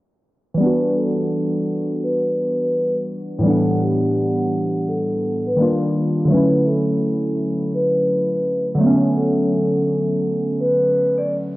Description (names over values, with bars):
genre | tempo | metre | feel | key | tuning
hip hop | 84 BPM | 4/4 | swing 62% on 16ths | unclear | A4 = 440 Hz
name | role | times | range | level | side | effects
warm analog keys | accompaniment | 0.5-11.6 s | A2 to F#5 | -19 LUFS | equal | chorus, cassette tape
vibraphone with soft mallets | melody | 0.6-11.3 s | G4 to D5 | -21 LUFS | equal | none
room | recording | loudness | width
light reverb, small room ambience | home recording on cassette, low-pass filter, nothing above 10.9 kHz | -17 LUFS | side -18 dB against mid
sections
0.6-11.6 A section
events
filter sweep 0.6-11.6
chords
0.6 Em9; 5.6 Ebmaj7; 6.3 Dmaj7; 8.8 Bm9